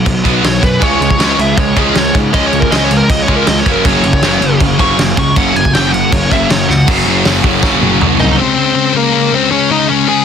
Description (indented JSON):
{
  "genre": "punk rock",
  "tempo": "159 BPM",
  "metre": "4/4",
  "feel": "straight",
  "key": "Db major",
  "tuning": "A4 = 440 Hz",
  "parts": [
    { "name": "distorted electric guitar", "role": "riff", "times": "0.0-8.4 s", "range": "Gb2 to Db4", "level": "-17 LUFS", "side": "right 13 dB", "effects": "overdrive" },
    { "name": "sludgy distorted guitar", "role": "riff", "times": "0.0-10.2 s", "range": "Gb2 to Db4", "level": "-15 LUFS", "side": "left 14 dB", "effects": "overdrive" },
    { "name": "fuzz picked electric bass", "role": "bass", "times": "0.1-8.4 s", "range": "Gb1 to Ab2", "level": "-18 LUFS", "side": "equal", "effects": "overdrive" },
    { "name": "loose indie drum kit", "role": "drums", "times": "0.1-8.3 s", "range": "crash cymbal, hi-hat, kick drum, snare drum, toms", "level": "-14 LUFS", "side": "equal", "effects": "none" },
    { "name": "smooth overdriven lead guitar", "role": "melody", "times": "0.5-10.2 s", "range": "Bb3 to Db6", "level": "-15 LUFS", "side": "equal", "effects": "none" },
    { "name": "cranked stack guitar", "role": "riff", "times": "0.8-8.4 s", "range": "Gb2 to Db4", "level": "-18 LUFS", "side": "right 1 dB", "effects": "overdrive" }
  ],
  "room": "little or no reverb",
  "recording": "dense, heavily limited modern master",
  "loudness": "-9 LUFS",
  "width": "side -7 dB against mid",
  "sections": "0.0-6.9 A section; 6.9-8.4 B section; 8.4-10.2 C section",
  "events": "lead electric guitar solo 0.0-6.9; drum fill 6.7, 7.6-8.4",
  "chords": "0.0 Cb5; 0.8 Db; 3.7 Gb; 8.4 Db5"
}